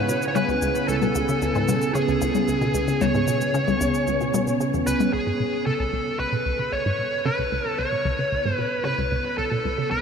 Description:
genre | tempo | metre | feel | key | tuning
ambient, sequencer-driven space music | 113 BPM | 4/4 | straight | C# minor | A4 = 439 Hz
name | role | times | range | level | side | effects
smooth overdriven lead guitar | melody | 0.0-10.0 s | G#4 to C#5 | -24 LUFS | equal | analog delay
sweeping resonant pad | sustained chords | 0.0-10.0 s | C#3 to E4 | -27 LUFS | right 2 dB | chorus
resonant blip pluck | riff | 0.0-10.0 s | C#2 to C#3 | -27 LUFS | equal | chorus, analog delay
bubbling stepped-filter texture | texture | 0.0-5.1 s | G#5 | -39 LUFS | right 3 dB | chorus, built-in reverb
electronic cabasa and toms | percussion | 0.1-5.1 s | none | -30 LUFS | left 9 dB | overdrive, analog delay
room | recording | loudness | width
wet huge ambient reverb, RT60 8.0 s | none | -21 LUFS | side -6 dB against mid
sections
0.0-5.1 A section; 5.1-10.0 B section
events
fade-in on analog synth pad 5.1-10.0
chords
0.0 C#m7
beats
0.36 | 0.89 1.42 1.95 2.48 | 3.01 3.54 4.07 4.60 | 5.13 5.67 6.20 6.73 | 7.26 7.79 8.32 8.85 | 9.38 9.91

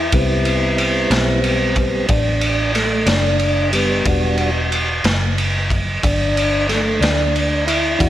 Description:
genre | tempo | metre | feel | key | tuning
slow blues | 61 BPM (dotted quarters) | 12/8 | straight | E minor | A4 = 440 Hz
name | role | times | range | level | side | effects
tonewheel organ | sustained chords | 0.0-8.1 s | E3 to F#4 | -19 LUFS | equal | overdrive, slow rotary speaker
vintage muted fingered electric bass | bass | 0.0-8.1 s | E1 to E2 | -21 LUFS | equal | none
raw garage drum kit | drums | 0.1-8.1 s | kick drum, ride cymbal, snare drum | -18 LUFS | equal | none
room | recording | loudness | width
moderate lush hall reverb, RT60 2.5 s | big arena sound | -15 LUFS | side -13 dB against mid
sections
0.0-8.1 A section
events
tonewheel organ solo 0.0-8.1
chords
0.0 Am7; 4.1 Em7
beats
| 0.11 1.10 2.08 3.07 | 4.06 5.04 6.03 7.01 | 8.00

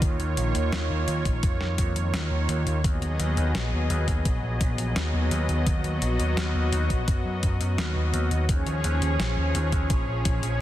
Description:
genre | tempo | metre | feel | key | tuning
synthwave | 85 BPM | 4/4 | straight | unclear | A4 = 438 Hz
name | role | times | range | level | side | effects
brassy analog pad | sustained chords | 0.0-10.6 s | Eb3 to Eb5 | -29 LUFS | equal | chorus, sidechain pumping
overdriven picked electric bass | bass | 0.0-10.6 s | Bb1 to Gb2 | -26 LUFS | equal | sidechain pumping
detuned 8-bit digital drum machine | drums | 0.0-10.6 s | hi-hat, snare drum | -33 LUFS | left 2 dB | studio reverb
electronic kick drum | drums | 0.0-10.4 s | none | -26 LUFS | equal | studio reverb
room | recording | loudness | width
light reverb | dense, heavily limited modern master | -23 LUFS | side -13 dB against mid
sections
0.0-10.6 A section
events
none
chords
0.0 Ebsus2; 2.8 Abm7; 8.5 Db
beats
| 0.02 0.72 1.43 2.14 | 2.84 3.55 4.25 4.96 | 5.67 6.37 7.08 7.78 | 8.49 9.20 9.90 10.61

